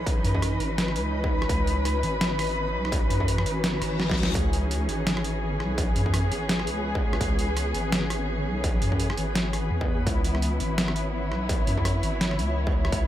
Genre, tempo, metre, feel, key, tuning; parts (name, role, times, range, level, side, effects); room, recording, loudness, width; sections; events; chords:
half-time drum and bass; 168 BPM; 4/4; swing 57% on 16ths, half-time; C# minor; A4 = 441 Hz
dark symphonic cello section; sustained chords; 0.0-13.1 s; E3 to B4; -30 LUFS; left 1 dB; vintage 12-bit sampler grit, sidechain pumping
deep soft wobble bass; bass; 0.0-13.1 s; G#1 to F#2; -28 LUFS; equal; chorus
backwards swelling texture; texture; 0.0-13.1 s; B3 to D#5; -36 LUFS; right 1 dB; built-in reverb
boom bap sampler-style drum kit; drums; 0.1-13.0 s; hi-hat, rim click, snare drum; -29 LUFS; equal; overdrive, small room ambience
electronic kick drum; drums; 0.1-13.0 s; -27 LUFS; equal; distortion, small room ambience
reverse cymbal; sound effects; 3.8-4.4 s; -36 LUFS; left 6 dB
light reverb, digital ambience; -23 LUFS; side -12 dB against mid
0.0-13.1 A section
reverse cymbal 3.8-4.4; drum fill 4.0-4.4
0.0 C#m